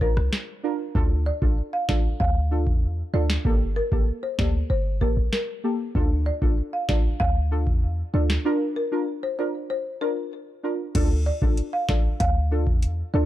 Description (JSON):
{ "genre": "dancehall", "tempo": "96 BPM", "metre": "4/4", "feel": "straight", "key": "D minor", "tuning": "A4 = 444 Hz", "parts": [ { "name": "folk marimba with medium mallets", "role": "melody", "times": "0.0-13.3 s", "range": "Bb4 to F5", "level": "-30 LUFS", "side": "left 1 dB", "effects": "none" }, { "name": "deep mellow chord stab", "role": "accompaniment", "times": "0.0-13.3 s", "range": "Bb3 to Bb4", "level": "-29 LUFS", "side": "right 1 dB", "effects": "chorus" }, { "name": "clean 808-style bass", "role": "bass", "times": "0.0-13.3 s", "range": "G1 to E2", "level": "-24 LUFS", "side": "equal", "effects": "none" }, { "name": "booming analog drum machine", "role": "drums", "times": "0.0-13.0 s", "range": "crash cymbal, hi-hat, kick drum, rim click, snare drum", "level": "-23 LUFS", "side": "equal", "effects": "none" } ], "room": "little or no reverb", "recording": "dark, warm production", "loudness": "-22 LUFS", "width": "side -14 dB against mid", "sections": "0.0-10.9 A section; 10.9-13.3 B section", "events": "break 8.4-10.9", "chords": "0.0 Bb; 0.9 Dm; 3.5 Gmadd9; 6.0 Dm; 8.4 Bb; 10.9 Dm" }